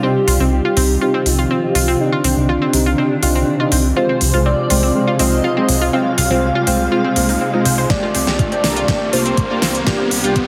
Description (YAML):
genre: progressive house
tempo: 122 BPM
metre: 4/4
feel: straight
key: C minor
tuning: A4 = 441 Hz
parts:
  - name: unison lead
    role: melody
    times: 0.0-10.5 s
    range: D4 to F5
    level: -24 LUFS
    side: equal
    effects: analog chorus, sidechain pumping, tape echo
  - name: airy dreamy lead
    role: second line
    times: 0.0-10.5 s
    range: D4 to F5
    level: -29 LUFS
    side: equal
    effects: chorus, sidechain pumping, dub echo
  - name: shimmering ambient pad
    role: sustained chords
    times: 0.0-10.5 s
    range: C3 to Ab4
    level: -26 LUFS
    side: equal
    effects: chorus, built-in reverb, sidechain pumping
  - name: analog pluck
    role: arpeggios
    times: 0.0-10.4 s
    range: Bb3 to C5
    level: -24 LUFS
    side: equal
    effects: chorus, vintage 12-bit sampler grit, sidechain pumping, dub echo
  - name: soft supersaw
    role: stabs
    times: 0.0-10.3 s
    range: Ab3 to Bb5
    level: -23 LUFS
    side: equal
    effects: vintage 12-bit sampler grit, sidechain pumping, low-pass filter, dub echo
  - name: riser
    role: sound effects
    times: 3.7-10.5 s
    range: none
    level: -29 LUFS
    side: equal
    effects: none
  - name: fat analog bass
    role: bass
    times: 0.3-10.4 s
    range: C2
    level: -21 LUFS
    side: equal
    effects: sidechain pumping
  - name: pop drum kit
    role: drums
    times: 0.3-10.5 s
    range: hi-hat, snare drum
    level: -23 LUFS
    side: equal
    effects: studio reverb
  - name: electronic kick drum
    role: drums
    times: 7.9-10.5 s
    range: none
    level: -21 LUFS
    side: equal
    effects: studio reverb
room: moderate lush hall reverb, RT60 1.8 s, digital ambience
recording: dense, heavily limited modern master, high-pass filter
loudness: -16 LUFS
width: mono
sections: 0.0-10.5 A section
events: build-up 0.0-10.5; filter sweep on supersaw synth 0.0-10.5; filter sweep on analog synth lead 0.0-10.5; riser 3.7-10.5; drum fill 7.9-10.5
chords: 0.0 Cm; 4.0 Fm/C; 7.9 Gm/C